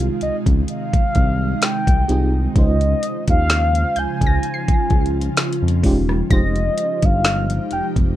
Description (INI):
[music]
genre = contemporary R&B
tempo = 64 BPM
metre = 4/4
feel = swing 54% on 16ths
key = F minor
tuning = A4 = 438 Hz
[part]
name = mellow horn-like synth lead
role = melody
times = 0.0-7.9 s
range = Eb5 to Ab5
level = -23 LUFS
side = equal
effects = chorus, digital delay
[part]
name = FM electric piano with tremolo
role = accompaniment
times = 0.0-8.2 s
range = Ab3 to C5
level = -26 LUFS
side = right 1 dB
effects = none
[part]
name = ethereal airy pad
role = sustained chords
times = 0.0-8.2 s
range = C3 to C5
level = -26 LUFS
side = right 1 dB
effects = ensemble chorus, built-in reverb, sidechain pumping
[part]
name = smooth synth bass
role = bass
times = 0.0-8.1 s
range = E1 to F2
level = -20 LUFS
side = equal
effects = none
[part]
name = smooth R&B drum kit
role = drums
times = 0.0-8.2 s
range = hi-hat, kick drum, rim click, snare drum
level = -18 LUFS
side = equal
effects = none
[part]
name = glassy wavetable pluck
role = texture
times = 0.0-8.2 s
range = Eb6 to C7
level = -30 LUFS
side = left 1 dB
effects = chorus, digital delay
[sound]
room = little or no reverb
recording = none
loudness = -16 LUFS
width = side -13 dB against mid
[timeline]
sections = 0.0-8.2 A section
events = none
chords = 0.0 Fm9/C; 2.6 Dbmaj7; 6.3 Fm9